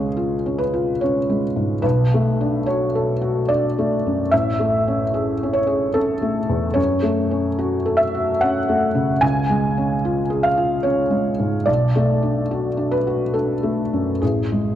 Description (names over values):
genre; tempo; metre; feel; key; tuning
neoclassical minimalist piano; 73 BPM; 3/4; rubato; unclear; A4 = 440 Hz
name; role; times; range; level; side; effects
felt-muted upright piano; solo; 0.0-14.8 s; A1 to G#5; -18 LUFS; equal; none
room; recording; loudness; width
moderate concert hall reverb, RT60 2.2 s; dark, warm production; -17 LUFS; side -11 dB against mid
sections
0.0-14.8 A section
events
none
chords
0.0 C#; 1.8 Bm7; 4.3 Amaj7; 6.8 F#m; 9.2 C#; 11.7 Bm7; 14.2 Amaj7(no3)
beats
0.16 1.00 | 1.83 2.67 3.50 | 4.32 5.14 5.96 | 6.78 7.59 8.41 | 9.22 10.04 10.86 | 11.68 12.51 13.35 | 14.22